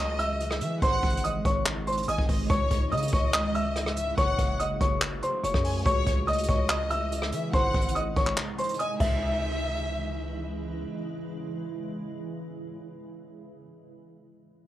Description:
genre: hip hop, trap.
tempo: 143 BPM.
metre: 4/4.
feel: half-time.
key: C# harmonic minor.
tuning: A4 = 441 Hz.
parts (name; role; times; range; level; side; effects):
dark concert grand piano; melody; 0.0-10.4 s; B#4 to E6; -29 LUFS; equal; low-pass filter, tape echo.
warm studio violin section; second line; 0.0-10.4 s; C#5 to G#5; -35 LUFS; left 2 dB; cassette tape, tape echo.
granular cloud pad; sustained chords; 0.0-13.1 s; B#2 to F#4; -36 LUFS; right 1 dB; built-in reverb, cassette tape.
distorted 808-style bass; bass; 0.0-10.9 s; F#1 to E3; -32 LUFS; equal; distortion.
jazz brush drum kit; drums; 0.2-9.1 s; crash cymbal, handclaps, hi-hat, kick drum, rim click; -28 LUFS; equal; cassette tape.
room: small room ambience.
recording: home recording on cassette.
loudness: -25 LUFS.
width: side -13 dB against mid.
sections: 0.0-9.2 A section; 9.2-12.6 B section.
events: break 8.4-9.2.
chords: 0.0 C#m; 0.8 G#; 2.5 C#m; 4.2 F#m; 5.9 C#m; 7.5 G#; 9.0 C#m.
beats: 0.40 | 0.82 1.24 1.66 2.08 | 2.50 2.92 3.34 3.76 | 4.18 4.60 5.02 5.44 | 5.86 6.28 6.70 7.12 | 7.53 7.95 8.37 8.79 | 9.21 9.63 10.05 10.47 | 10.89 11.31 11.73 12.15.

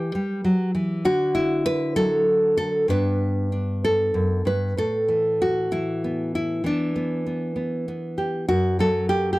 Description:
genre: folk, solo fingerstyle acoustic guitar.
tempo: 65 BPM (dotted quarters).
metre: 6/8.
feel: rubato.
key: unclear.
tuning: A4 = 442 Hz.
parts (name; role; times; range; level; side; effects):
nylon-string guitar; solo; 0.0-9.4 s; F#2 to B4; -20 LUFS; equal; none.
room: little or no reverb.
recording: dry, close 1970s-style studio recording.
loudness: -20 LUFS.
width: side -19 dB against mid.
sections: 0.0-4.8 A section; 4.8-9.4 B section.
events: none.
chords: 0.0 Em; 1.0 D; 2.9 G; 4.8 Asus2; 6.6 Em7; 8.5 D/F# (rootless).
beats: 0.14 | 1.05 1.96 | 2.89 3.83 | 4.78 5.71 | 6.64 7.57 | 8.49.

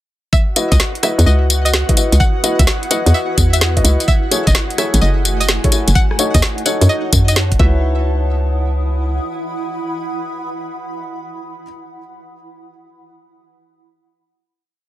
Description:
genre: UK garage, two-step garage.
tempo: 128 BPM.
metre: 4/4.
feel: swing 67% on 16ths.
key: C# minor.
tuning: A4 = 440 Hz.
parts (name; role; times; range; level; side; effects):
string-like resonator pluck; melody; 0.3-11.6 s; D#5 to F#5; -24 LUFS; equal; chorus, digital delay.
airy breathy pad; sustained chords; 0.5-7.6 s; F#4 to F#5; -28 LUFS; right 1 dB; chorus, sidechain pumping.
electronic kick drum; drums; 0.3-7.7 s; none; -15 LUFS; equal; none.
garage drum kit; drums; 0.3-7.6 s; hi-hat, rim click, snare drum, tambourine; -18 LUFS; left 1 dB; none.
granular cloud pad; texture; 1.0-12.1 s; A3 to D#6; -26 LUFS; right 2 dB; built-in reverb, sidechain pumping.
dark baby grand piano; stabs; 0.6-11.6 s; D#4 to E5; -22 LUFS; left 2 dB; digital delay.
hollow knocking FM bass; bass; 0.7-9.2 s; D#1 to F#2; -14 LUFS; equal; none.
room: little or no reverb.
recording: none.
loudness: -13 LUFS.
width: side -14 dB against mid.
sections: 0.3-7.8 drop; 7.8-11.6 final chord.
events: drop 0.3-7.8.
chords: 0.3 C#m11; 4.1 F#m9; 6.0 D#m7b5; 7.6 C#m11.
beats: | 0.33 0.80 1.27 1.74 | 2.20 2.67 3.14 3.61 | 4.08 4.55 5.02 5.49 | 5.95 6.42 6.89 7.36 | 7.83 8.30 8.77 9.24 | 9.70 10.17 10.64 11.11.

